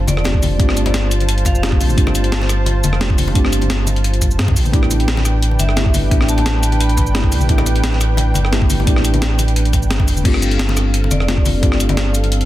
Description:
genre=liquid drum and bass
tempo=174 BPM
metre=4/4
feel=straight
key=unclear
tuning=A4 = 439 Hz
part: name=deep mellow chord stab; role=accompaniment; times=0.0-12.5 s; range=A3 to G4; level=-23 LUFS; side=equal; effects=chorus, ping-pong delay
part: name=warm analog pad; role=sustained chords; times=0.0-12.5 s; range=C4 to A5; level=-25 LUFS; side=right 2 dB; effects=chorus
part: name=sub bass with octave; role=bass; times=0.0-12.5 s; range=E1 to G2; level=-17 LUFS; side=equal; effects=none
part: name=congas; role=percussion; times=0.0-12.3 s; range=none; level=-25 LUFS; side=left 4 dB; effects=none
part: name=vibraphone with medium hard mallets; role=melody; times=0.1-1.8, 5.6-7.3, 11.1-12.1 s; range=D5 to B5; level=-27 LUFS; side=equal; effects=digital delay
part: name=breakbeat sampler-style drum kit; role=drums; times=0.1-12.5 s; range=cabasa, crash cymbal, hi-hat, rim click, snare drum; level=-22 LUFS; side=left 1 dB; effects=none
part: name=electronic kick drum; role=drums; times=0.3-11.7 s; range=none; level=-16 LUFS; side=equal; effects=none
room=digital ambience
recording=dense, heavily limited modern master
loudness=-13 LUFS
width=side -14 dB against mid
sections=0.0-12.5 A section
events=none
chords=0.0 G9sus4; 4.6 A9sus4; 10.3 G9sus4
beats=0.25 | 0.60 0.94 1.29 1.63 | 1.98 2.32 2.67 3.01 | 3.35 3.70 4.04 4.39 | 4.74 5.08 5.42 5.77 | 6.11 6.46 6.80 7.15 | 7.49 7.84 8.18 8.53 | 8.87 9.22 9.56 9.91 | 10.25 10.60 10.94 11.29 | 11.63 11.98 12.32

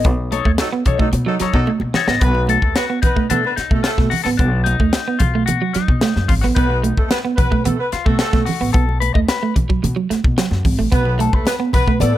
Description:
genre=funk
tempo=110 BPM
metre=4/4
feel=straight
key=B mixolydian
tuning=A4 = 440 Hz
part: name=clean electric guitar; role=accompaniment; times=0.0-12.2 s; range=D4 to D#5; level=-23 LUFS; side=left 8 dB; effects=wah
part: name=electric guitar at the edge of break-up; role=riff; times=0.0-12.1 s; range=F#3 to B3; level=-22 LUFS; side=right 6 dB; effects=none
part: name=upright bass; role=bass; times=0.0-12.1 s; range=G#1 to B2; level=-20 LUFS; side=equal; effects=none
part: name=tight funk drum kit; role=drums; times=0.0-12.1 s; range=hi-hat, kick drum, snare drum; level=-18 LUFS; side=equal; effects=none
part: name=congas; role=percussion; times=0.1-12.1 s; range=none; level=-26 LUFS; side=right 4 dB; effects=none
part: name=mellow horn section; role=second line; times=0.6-12.2 s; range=F#3 to B4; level=-23 LUFS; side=right 1 dB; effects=slapback echo
part: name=tambourine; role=percussion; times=10.9-12.1 s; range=none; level=-38 LUFS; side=left 5 dB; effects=none
room=studio reverb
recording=none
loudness=-15 LUFS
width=side -13 dB against mid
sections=0.0-2.2 A section; 2.2-12.2 B section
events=band accent 0.1-2.2; drum fill 1.7-2.2; clean electric guitar solo 2.2-12.2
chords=0.0 B9; 2.2 B7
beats=| 0.05 0.59 1.13 1.68 | 2.22 2.76 3.31 3.85 | 4.39 4.93 5.48 6.02 | 6.57 7.11 7.66 8.20 | 8.74 9.29 9.83 10.38 | 10.92 11.47 12.01

